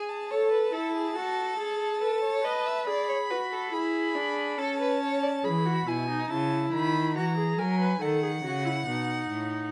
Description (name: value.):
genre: classical, baroque-style fugue for string quartet.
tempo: 70 BPM.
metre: 3/4.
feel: straight.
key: A major.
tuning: A4 = 440 Hz.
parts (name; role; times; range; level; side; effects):
warm violin; melody; 0.0-9.7 s; F#5 to B5; -35 LUFS; equal; none.
rich violin; second line; 0.0-5.3 s; G#4 to E5; -34 LUFS; equal; none.
warm viola; accompaniment; 0.3-9.7 s; C#4 to B4; -32 LUFS; equal; none.
warm cello; bass; 5.4-9.7 s; A2 to F#3; -32 LUFS; equal; none.
room: moderate studio ambience, RT60 0.5 s.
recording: none.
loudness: -28 LUFS.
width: mono.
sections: 0.0-9.7 A section.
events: none.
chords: 0.3 A5; 2.0 B7/A; 2.9 E7; 4.6 A/C#; 5.4 E; 7.2 F#7/E; 8.0 B7.